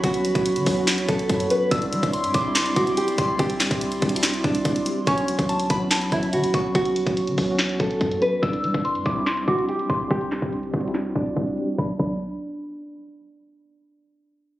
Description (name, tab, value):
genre	hip hop, trap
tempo	143 BPM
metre	4/4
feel	half-time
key	B minor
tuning	A4 = 440 Hz
part	nylon-string guitar	melody	0.0-12.2 s	C#4 to B4	-26 LUFS	right 1 dB	none
part	soft synth bell	second line	0.0-12.2 s	A5 to E6	-28 LUFS	left 1 dB	chorus, ping-pong delay
part	mellow tine electric piano	accompaniment	0.0-12.2 s	F#3 to G4	-27 LUFS	equal	medium stereo tremolo
part	warbly tape-like pad	sustained chords	0.0-5.0 s	E4 to C6	-31 LUFS	right 1 dB	chorus, built-in reverb
part	warm 808-style bass	bass	0.0-12.4 s	B1 to G3	-32 LUFS	equal	none
part	trap drum kit	drums	0.0-12.1 s	crash cymbal, handclaps, hi-hat, kick drum, snare drum	-25 LUFS	equal	none
room	light reverb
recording	recorded on a phone in the room, studio reverb, compression, low-pass filter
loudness	-20 LUFS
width	side -15 dB against mid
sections	0.0-5.1 A section; 5.1-11.8 B section; 11.8-13.5 C section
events	filter sweep 5.1-11.8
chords	0.0 Bsus2; 1.7 Cadd9; 5.1 Bsus2; 8.4 Cadd9; 11.8 Bm